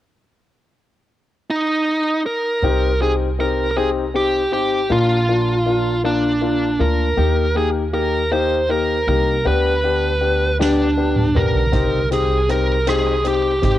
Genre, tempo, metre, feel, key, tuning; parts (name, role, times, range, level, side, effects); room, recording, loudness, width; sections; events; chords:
six-eight pop ballad; 53 BPM (dotted quarters); 6/8; straight; C minor; A4 = 439 Hz
bluesy overdriven lead guitar; melody; 1.5-13.7 s; D4 to C5; -19 LUFS; right 1 dB; distortion, cassette tape
warm grand piano; accompaniment; 2.6-13.8 s; Bb3 to G4; -22 LUFS; left 7 dB
upright bass; bass; 2.6-13.8 s; Ab1 to Eb2; -22 LUFS; right 1 dB
soft-mallet drum kit; drums; 10.6-13.8 s; hi-hat, kick drum, rim click, snare drum, toms; -22 LUFS; right 1 dB; cassette tape
small room ambience; home recording on cassette; -16 LUFS; side -13 dB against mid
0.4-2.6 A section; 2.6-13.8 B section
drum fill 10.6-11.7
0.4 N.C.; 2.6 Cm; 4.9 Bb; 7.2 Eb; 9.5 G/D; 11.7 Cm